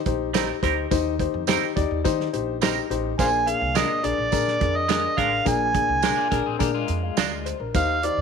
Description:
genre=uptempo 1960s-style soul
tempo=105 BPM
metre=4/4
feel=straight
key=Bb mixolydian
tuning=A4 = 440 Hz
part: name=warm upright piano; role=accompaniment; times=0.1-8.2 s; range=Bb2 to F5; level=-26 LUFS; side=left 11 dB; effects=none
part: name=upright bass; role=bass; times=0.1-8.2 s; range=A1 to Eb3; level=-30 LUFS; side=right 2 dB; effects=none
part: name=warm soul drum kit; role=drums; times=0.1-8.2 s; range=hi-hat, kick drum, snare drum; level=-26 LUFS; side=right 6 dB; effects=none
part: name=semi-hollow electric guitar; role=stabs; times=0.3-7.3 s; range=G3 to Bb4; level=-28 LUFS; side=right 14 dB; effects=lush chorus, slapback echo
part: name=tambourine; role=percussion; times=0.3-7.9 s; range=none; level=-36 LUFS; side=right 17 dB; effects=none
part: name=overdriven harmonica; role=melody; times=3.2-8.2 s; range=C5 to Ab5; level=-23 LUFS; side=right 2 dB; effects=none
part: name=electric guitar at the edge of break-up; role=riff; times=6.0-7.6 s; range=Ab3 to D5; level=-31 LUFS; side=left 12 dB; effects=tremolo
room=moderate plate reverb, RT60 1.8 s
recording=1960s-style stereo with parts hard left and right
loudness=-20 LUFS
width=side -6 dB against mid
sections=0.0-8.2 A section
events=none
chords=0.0 Eb6; 3.2 Bb7

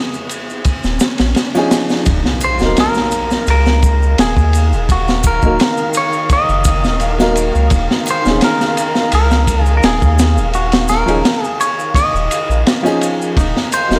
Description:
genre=trip hop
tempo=85 BPM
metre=4/4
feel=straight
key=Eb minor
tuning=A4 = 440 Hz
part: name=clean electric guitar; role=melody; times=0.0-14.0 s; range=Gb4 to Eb5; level=-21 LUFS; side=equal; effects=spring reverb, tape echo
part: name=riser and impact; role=sound effects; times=0.0-4.9 s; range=none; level=-27 LUFS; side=equal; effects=none
part: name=tube shaker and triangle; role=percussion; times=0.1-14.0 s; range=none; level=-31 LUFS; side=equal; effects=none
part: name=crunchy breakbeat drum kit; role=drums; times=0.3-14.0 s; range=kick drum, ride cymbal, snare drum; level=-19 LUFS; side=equal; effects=vintage 12-bit sampler grit
part: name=round analog bass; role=bass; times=0.8-14.0 s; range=Eb1 to Eb2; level=-18 LUFS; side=equal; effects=none
part: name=warm upright piano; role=accompaniment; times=1.5-14.0 s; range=Eb3 to Bb4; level=-22 LUFS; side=equal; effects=tremolo, tape echo
part: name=muted chamber string section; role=sustained chords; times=2.1-14.0 s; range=Eb3 to F5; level=-26 LUFS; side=equal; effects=none
part: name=Celtic harp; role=arpeggios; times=13.4-14.0 s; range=Eb4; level=-27 LUFS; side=equal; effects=none
room=small room ambience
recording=dry, gritty hardware recording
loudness=-14 LUFS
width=mono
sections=0.0-2.1 A section; 2.1-14.0 B section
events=riser 0.0-2.1; impact 2.1-4.9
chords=0.0 Dbadd9; 2.1 Ebm; 7.7 Dbadd9/Eb; 13.4 Ebm

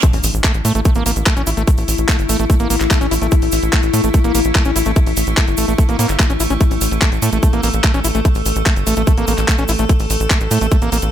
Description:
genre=psychedelic trance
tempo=146 BPM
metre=4/4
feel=straight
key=unclear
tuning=A4 = 441 Hz
part: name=evolving wavetable pad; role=sustained chords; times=0.3-11.1 s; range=A3 to A4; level=-22 LUFS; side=left 4 dB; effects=chorus, built-in reverb, sidechain pumping
part: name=overdriven acid bass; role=riff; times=0.0-11.0 s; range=A3 to E4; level=-22 LUFS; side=moving between left 5 dB and right 6 dB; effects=auto-pan, sidechain pumping, tape echo
part: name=electronic kick drum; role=drums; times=0.0-10.8 s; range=none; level=-14 LUFS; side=equal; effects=small room ambience
part: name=garage drum kit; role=drums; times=0.0-11.1 s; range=handclaps, hi-hat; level=-21 LUFS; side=left 1 dB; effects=small room ambience
part: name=tube shaker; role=percussion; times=0.0-11.1 s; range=none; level=-27 LUFS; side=right 5 dB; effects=none
part: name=reverse cymbal and impact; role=sound effects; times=0.0-1.7 s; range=none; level=-26 LUFS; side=right 2 dB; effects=none
part: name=tight sequencer bass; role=bass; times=0.1-11.1 s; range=G1 to A2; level=-18 LUFS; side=equal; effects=none
room=digital ambience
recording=none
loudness=-13 LUFS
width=side -10 dB against mid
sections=0.0-11.1 A section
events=drop 0.0-11.1; impact 0.0-1.7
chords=0.0 A5

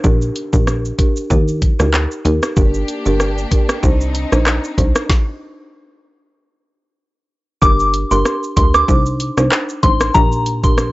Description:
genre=dancehall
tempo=95 BPM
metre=4/4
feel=swing 56% on 16ths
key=G minor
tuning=A4 = 441 Hz
part: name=folk marimba with medium mallets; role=accompaniment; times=0.0-10.8 s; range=D4 to C5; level=-21 LUFS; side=right 1 dB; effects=sidechain pumping
part: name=plucky analog bass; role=bass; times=0.0-10.9 s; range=G1 to Eb2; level=-18 LUFS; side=equal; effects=none
part: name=island pop drum kit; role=drums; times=0.0-10.9 s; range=handclaps, hi-hat, kick drum, rim click, shaker, snare drum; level=-16 LUFS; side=equal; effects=overdrive
part: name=downlifter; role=sound effects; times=0.0-2.6 s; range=none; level=-46 LUFS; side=equal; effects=none
part: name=warm studio string section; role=sustained chords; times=2.6-5.1 s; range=Bb3 to G4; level=-28 LUFS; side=left 2 dB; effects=sidechain pumping
part: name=soft synth bell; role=melody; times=7.6-10.8 s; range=Bb5 to D6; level=-16 LUFS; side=left 1 dB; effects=chorus, phaser
room=digital ambience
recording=dry, gritty hardware recording, cassette tape, nothing above 7.8 kHz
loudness=-13 LUFS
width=side -19 dB against mid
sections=0.0-7.6 A section; 7.6-10.9 B section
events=stop 5.1-7.6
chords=0.0 Bb6; 1.3 Eb; 2.6 Gm; 3.8 Cmadd9; 5.1 N.C.; 7.6 Gm; 8.9 Cmadd9; 10.1 Bb6

